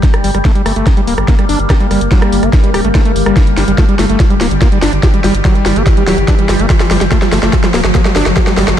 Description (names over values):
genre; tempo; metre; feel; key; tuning
psychedelic trance; 144 BPM; 4/4; straight; G minor; A4 = 443 Hz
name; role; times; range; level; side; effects
overtone-sweeping drone; sustained chords; 0.0-8.8 s; G3 to G4; -18 LUFS; left 2 dB; chorus, built-in reverb, phaser, sidechain pumping
drum and bass drum kit; drums; 0.0-8.8 s; hi-hat, rim click, snare drum; -17 LUFS; equal; none
electronic kick drum; drums; 0.0-8.4 s; none; -11 LUFS; equal; none
riser; sound effects; 0.6-8.8 s; none; -21 LUFS; equal; none
overdriven acid bass; riff; 0.2-8.7 s; F#3 to G4; -17 LUFS; equal; auto-pan, sidechain pumping, dub echo
round analog bass; bass; 0.2-8.7 s; D1 to G1; -16 LUFS; equal; none
room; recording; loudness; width
digital ambience; none; -9 LUFS; side -10 dB against mid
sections
0.0-8.8 A section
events
build-up 0.0-8.8; drum fill 0.0-8.8; riser 0.6-8.8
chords
0.0 G5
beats
| 0.03 0.45 0.87 1.28 | 1.70 2.12 2.53 2.95 | 3.37 3.78 4.20 4.62 | 5.03 5.45 5.87 6.28 | 6.70 7.12 7.53 7.95 | 8.37 8.78